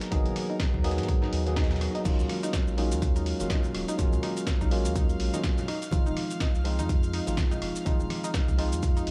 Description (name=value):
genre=deep house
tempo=124 BPM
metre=4/4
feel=swing 57% on 16ths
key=Eb minor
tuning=A4 = 440 Hz
part: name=tine electric piano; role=stabs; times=0.0-9.1 s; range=F3 to Ab4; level=-34 LUFS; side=equal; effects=sidechain pumping, tape echo
part: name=dusty soul sampler-style drum kit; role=drums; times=0.0-9.1 s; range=cabasa, crash cymbal, hi-hat, rim click, snare drum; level=-39 LUFS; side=equal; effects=none
part: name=dusty soul sampler-style drum kit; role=drums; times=0.0-9.1 s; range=hi-hat, snare drum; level=-48 LUFS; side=equal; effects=none
part: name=warm studio violin section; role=texture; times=0.0-9.1 s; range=Bb4 to F6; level=-48 LUFS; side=equal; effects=sidechain pumping
part: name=analog pluck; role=arpeggios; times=0.1-9.0 s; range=Eb4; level=-41 LUFS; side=equal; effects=chorus, sidechain pumping, tape echo
part: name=round analog bass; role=bass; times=0.1-9.1 s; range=Eb1 to Ab2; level=-32 LUFS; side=equal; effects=none
part: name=electronic kick drum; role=drums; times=0.1-8.9 s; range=none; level=-28 LUFS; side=equal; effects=none
part: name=congas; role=percussion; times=0.1-8.8 s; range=none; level=-41 LUFS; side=equal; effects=none
part: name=swell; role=sound effects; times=1.3-2.1 s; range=none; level=-47 LUFS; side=equal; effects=none
room=digital ambience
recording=none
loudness=-27 LUFS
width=mono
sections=0.0-2.1 A section; 2.1-9.1 B section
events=filter sweep on tine electric piano 0.0-2.1; band accent 1.6; drop 2.1-9.1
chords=0.0 Abm9; 2.1 Ebm11; 5.7 Fm7